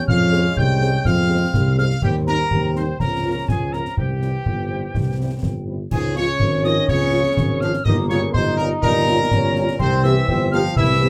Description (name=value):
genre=military-style march for wind band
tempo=124 BPM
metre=2/4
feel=straight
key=unclear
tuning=A4 = 440 Hz
part: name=mellow piccolo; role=second line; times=0.0-11.1 s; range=G5 to G6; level=-28 LUFS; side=equal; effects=none
part: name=dark trombone section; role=sustained chords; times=0.0-11.1 s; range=E3 to E4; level=-28 LUFS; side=equal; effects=none
part: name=warm trumpet section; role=melody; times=0.1-11.1 s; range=G4 to G5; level=-29 LUFS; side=equal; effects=none
part: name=dark tuba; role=bass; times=0.1-11.1 s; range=G1 to F2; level=-23 LUFS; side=equal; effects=none
part: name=concert bass drum, concert snare drum and clash cymbals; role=drums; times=0.1-11.1 s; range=none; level=-26 LUFS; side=equal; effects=none
part: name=dark French horn section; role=accompaniment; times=0.3-11.1 s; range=F3 to Ab4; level=-28 LUFS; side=equal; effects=none
part: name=warm euphonium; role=second line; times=5.9-11.1 s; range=Ab2 to F3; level=-28 LUFS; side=equal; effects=none
room=wet booth ambience, RT60 0.2 s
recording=heard from further back in the room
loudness=-19 LUFS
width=mono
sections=0.0-5.9 A section; 5.9-11.1 A section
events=none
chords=0.1 Fm; 2.0 Cm/Eb; 3.0 Bbm/Db; 4.0 C; 5.9 Db; 7.9 Gm7b5; 9.8 C7